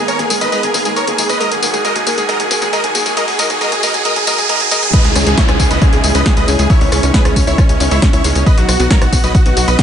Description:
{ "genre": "uplifting trance", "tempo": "136 BPM", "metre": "4/4", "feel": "straight", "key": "unclear", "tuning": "A4 = 441 Hz", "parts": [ { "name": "big supersaw lead", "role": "melody", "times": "0.0-9.8 s", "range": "C#4 to D#5", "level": "-17 LUFS", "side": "equal", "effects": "sidechain pumping, ping-pong delay" }, { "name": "lush unison pad", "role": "sustained chords", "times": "0.0-9.8 s", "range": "D#3 to A#4", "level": "-22 LUFS", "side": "right 1 dB", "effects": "chorus, sidechain pumping" }, { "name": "analog pluck", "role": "arpeggios", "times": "0.0-9.8 s", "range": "F#3 to C#4", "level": "-22 LUFS", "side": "left 1 dB", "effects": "chorus, sidechain pumping, ping-pong delay" }, { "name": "tight sequencer bass", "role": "bass", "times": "0.0-9.8 s", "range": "D#1 to E2", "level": "-18 LUFS", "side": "equal", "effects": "tube saturation, sidechain pumping" }, { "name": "riser and downlifter", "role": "sound effects", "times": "0.2-8.5 s", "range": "none", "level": "-21 LUFS", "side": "right 2 dB", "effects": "none" }, { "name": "punchy analog drum machine", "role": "drums", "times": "0.1-9.8 s", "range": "crash cymbal, hi-hat, rim click, snare drum, tambourine", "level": "-19 LUFS", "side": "left 1 dB", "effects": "sidechain pumping on hats, sidechain pumping on perc, sidechain pumping on cymbals" }, { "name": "electronic kick drum", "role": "drums", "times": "4.9-9.8 s", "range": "none", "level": "-12 LUFS", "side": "equal", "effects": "none" } ], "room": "light reverb, digital ambience", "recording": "high-pass filter, nothing above 10.5 kHz", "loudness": "-11 LUFS", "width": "side -9 dB against mid", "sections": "0.0-4.9 A section; 4.9-9.8 B section", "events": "build-up 0.0-4.9; filter sweep on synth pluck 0.0-4.9; riser 0.2-4.9; drop 4.9-9.8", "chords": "0.0 G#madd9; 1.4 D#m; 4.9 C#madd9; 8.5 B", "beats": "0.08 0.52 0.96 | 1.41 1.85 2.29 2.73 | 3.17 3.61 4.05 4.49 | 4.93 5.38 5.82 6.26 | 6.70 7.14 7.58 8.02 | 8.46 8.91 9.35 9.79" }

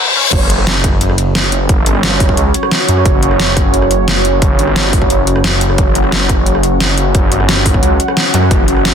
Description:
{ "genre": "dark technical drum and bass", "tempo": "176 BPM", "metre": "4/4", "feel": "straight", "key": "unclear", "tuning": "A4 = 440 Hz", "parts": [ { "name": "riser, reverse cymbal and zap", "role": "sound effects", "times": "0.0-0.3, 8.3-8.4 s", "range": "none", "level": "-16 LUFS", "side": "left 3 dB", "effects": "none" }, { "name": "dubstep drum kit", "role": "drums", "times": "0.1-8.9 s", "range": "crash cymbal, hi-hat, rim click, snare drum, toms", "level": "-16 LUFS", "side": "equal", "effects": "overdrive, high-pass filter on snare, high-pass filter on hats, high-pass filter on toms, high-pass filter on cymbals, high-pass filter on room" }, { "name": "deep dark ambient pad", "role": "sustained chords", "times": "1.0-8.9 s", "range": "C#4 to F#5", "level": "-16 LUFS", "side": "right 1 dB", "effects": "chorus, built-in reverb, sidechain pumping" }, { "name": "wide detuned saw bass", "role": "bass", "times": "0.3-8.9 s", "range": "F#1 to F#2", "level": "-14 LUFS", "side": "equal", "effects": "chorus, sidechain pumping" }, { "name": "electronic kick drum", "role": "drums", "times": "0.3-8.6 s", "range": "none", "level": "-14 LUFS", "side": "equal", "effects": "overdrive" } ], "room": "light reverb", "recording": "dense, heavily limited modern master, high-pass filter", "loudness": "-9 LUFS", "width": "side -8 dB against mid", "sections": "0.3-8.9 A section", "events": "break 0.0-0.3; riser 0.0-0.3; reverse cymbal 0.0-0.3; drum fill 0.1; drop 0.3-8.9", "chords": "0.3 F#5", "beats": "| 0.33 0.67 1.01 1.35 | 1.69 2.03 2.37 2.71 | 3.06 3.40 3.74 4.08 | 4.42 4.76 5.10 5.44 | 5.78 6.12 6.46 6.81 | 7.15 7.49 7.83 8.17 | 8.51 8.85" }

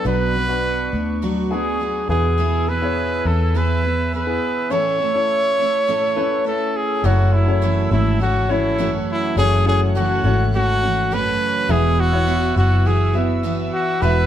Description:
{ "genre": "piano-driven pop", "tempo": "103 BPM", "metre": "4/4", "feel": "straight", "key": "F# minor", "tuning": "A4 = 443 Hz", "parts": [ { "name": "clear trumpet", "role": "melody", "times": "0.0-14.3 s", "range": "E4 to C#5", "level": "-20 LUFS", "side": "equal", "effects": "none" }, { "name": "warm concert grand piano", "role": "accompaniment", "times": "0.0-14.3 s", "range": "A2 to E5", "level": "-26 LUFS", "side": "left 3 dB", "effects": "none" }, { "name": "chorused pulse-width pad", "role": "sustained chords", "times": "0.0-14.3 s", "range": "D4 to F#6", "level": "-32 LUFS", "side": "equal", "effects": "none" }, { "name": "picked steel-string acoustic guitar", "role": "riff", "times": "0.0-14.3 s", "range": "F#2 to A4", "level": "-25 LUFS", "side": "right 4 dB", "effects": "none" }, { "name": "vintage muted fingered electric bass", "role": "bass", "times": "0.0-14.3 s", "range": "E1 to E2", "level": "-19 LUFS", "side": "equal", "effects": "none" } ], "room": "moderate studio reverb, RT60 0.9 s", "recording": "band playing live in one room", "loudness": "-16 LUFS", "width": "side -10 dB against mid", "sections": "0.0-7.0 A section; 7.0-14.3 B section", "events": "none", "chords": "0.0 Bm; 2.1 E; 4.7 A; 7.0 F#m7; 11.7 Esus2", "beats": "| 0.06 0.64 1.22 1.80 | 2.38 2.96 3.55 4.13 | 4.71 5.29 5.88 6.46 | 7.04 7.62 8.20 8.79 | 9.37 9.95 10.53 11.11 | 11.69 12.28 12.86 13.44 | 14.02" }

